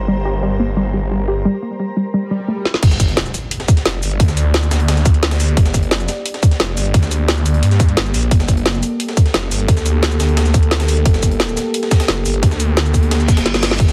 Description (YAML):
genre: dark technical drum and bass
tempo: 175 BPM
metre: 4/4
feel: straight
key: G minor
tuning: A4 = 444 Hz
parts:
  - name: deep dark ambient pad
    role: sustained chords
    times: 3.6-13.9 s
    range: Bb3 to D5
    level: -26 LUFS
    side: equal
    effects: chorus, built-in reverb, sidechain pumping
  - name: snarling distorted saw bass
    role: bass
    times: 0.0-13.9 s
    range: F1 to G2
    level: -19 LUFS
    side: equal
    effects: distortion, overdrive, sidechain pumping
  - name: granular cloud pad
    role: texture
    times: 0.0-1.5 s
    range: G4 to Bb5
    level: -31 LUFS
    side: equal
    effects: built-in reverb, sidechain pumping
  - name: warbly dusty pluck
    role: arpeggios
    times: 0.1-2.6 s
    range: G3 to G4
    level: -21 LUFS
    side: equal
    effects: chorus, sidechain pumping, tape echo
  - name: swell, impact and reverse cymbal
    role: sound effects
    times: 2.3-4.2, 13.2-13.8 s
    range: none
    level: -30 LUFS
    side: equal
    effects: none
  - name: drum and bass drum kit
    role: drums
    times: 2.7-13.9 s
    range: crash cymbal, hi-hat, shaker, snare drum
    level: -22 LUFS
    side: equal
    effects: none
  - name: breakbeat sampler-style drum kit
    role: drums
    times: 2.8-13.9 s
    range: hi-hat, snare drum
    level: -29 LUFS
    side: equal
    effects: high-pass filter on hats, high-pass filter on snare
  - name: electronic kick drum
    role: drums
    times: 2.8-13.9 s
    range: none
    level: -15 LUFS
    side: equal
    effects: none
room: little or no reverb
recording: heavily compressed radio sound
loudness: -16 LUFS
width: mono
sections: 0.0-2.8 A section; 2.8-13.9 B section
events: filter sweep on synth arpeggio sound 0.0-2.8; swell 2.3-2.8; drum fill 2.7, 13.5-13.8; drop 2.8-13.9; impact 2.8-4.2; reverse cymbal 13.2-13.8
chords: 0.0 Gm